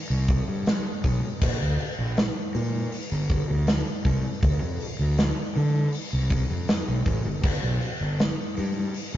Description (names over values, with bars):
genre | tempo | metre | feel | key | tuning
quiet-loud alternative rock | 80 BPM | 4/4 | straight | unclear | A4 = 440 Hz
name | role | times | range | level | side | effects
fuzz fingered electric bass | bass | 0.1-9.2 s | G1 to D3 | -25 LUFS | equal | overdrive
huge arena drum kit | drums | 0.3-9.1 s | crash cymbal, hi-hat, kick drum, snare drum | -26 LUFS | equal | none
room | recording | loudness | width
moderate booth ambience, RT60 0.2 s | rough rehearsal-room recording, nothing above 7.5 kHz | -23 LUFS | side -12 dB against mid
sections
0.0-9.2 A section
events
none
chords
none